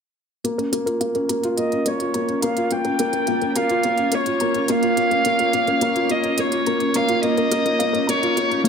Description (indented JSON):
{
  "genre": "piano and strings electronica",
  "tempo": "106 BPM",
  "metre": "4/4",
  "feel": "straight",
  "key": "Bb dorian",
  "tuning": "A4 = 442 Hz",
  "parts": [
    { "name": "granular cloud pad", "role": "sustained chords", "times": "2.2-8.7 s", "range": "Bb3 to Db5", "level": "-27 LUFS", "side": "right 2 dB", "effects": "built-in reverb" },
    { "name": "felt-muted upright piano", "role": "riff", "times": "0.4-8.7 s", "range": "Bb3 to F4", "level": "-22 LUFS", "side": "left 1 dB", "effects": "tape echo" },
    { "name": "electronic hi-hat", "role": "drums", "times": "0.4-8.7 s", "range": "none", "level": "-29 LUFS", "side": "right 2 dB", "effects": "studio ambience" },
    { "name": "soft round pluck", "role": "arpeggios", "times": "0.6-8.7 s", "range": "Bb3 to Bb5", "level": "-30 LUFS", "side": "left 2 dB", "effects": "none" },
    { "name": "dark violin", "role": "melody", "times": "1.6-8.7 s", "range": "Db5 to G5", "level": "-22 LUFS", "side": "right 1 dB", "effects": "low-pass filter, tape echo" }
  ],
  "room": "moderate echo chamber reverb, RT60 2.5 s",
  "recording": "none",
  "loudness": "-18 LUFS",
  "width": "side -6 dB against mid",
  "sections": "0.4-8.7 A section",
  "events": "build-up 0.4-8.7; filter sweep on violin 0.4-8.7; filter sweep 0.4-8.7",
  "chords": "0.4 Bbm"
}